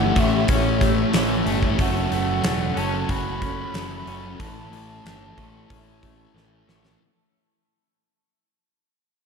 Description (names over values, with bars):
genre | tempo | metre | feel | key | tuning
rock, shoegaze and dream pop | 92 BPM | 4/4 | straight | A mixolydian | A4 = 440 Hz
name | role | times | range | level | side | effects
mellow alto ocarina | melody | 0.0-6.3 s | C#5 to B5 | -31 LUFS | right 2 dB | analog delay
soft string machine | sustained chords | 0.0-7.0 s | C#4 to F#5 | -32 LUFS | right 1 dB | phaser, ensemble chorus
twangy electric guitar | arpeggios | 0.0-7.0 s | E3 to F#4 | -33 LUFS | left 8 dB | lush chorus, analog delay
overdriven semi-hollow guitar | riff | 0.0-7.0 s | F#2 to A4 | -29 LUFS | right 13 dB | reverse reverb
thick fuzz guitar | riff | 0.0-7.0 s | F#2 to A3 | -27 LUFS | left 8 dB | distortion, lush chorus
growling picked electric bass | bass | 0.0-7.0 s | E1 to A1 | -28 LUFS | equal | overdrive
huge arena drum kit | drums | 0.2-7.0 s | hi-hat, kick drum, snare drum | -25 LUFS | equal | none
room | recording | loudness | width
light reverb, studio ambience | none | -19 LUFS | side -6 dB against mid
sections
0.0-7.0 A section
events
fade-out 0.0-7.0; drum fill 6.3-7.0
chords
0.0 A; 1.8 F#m; 4.4 A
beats
0.48 1.13 | 1.78 2.44 3.09 3.74 | 4.39 5.04 5.69 6.35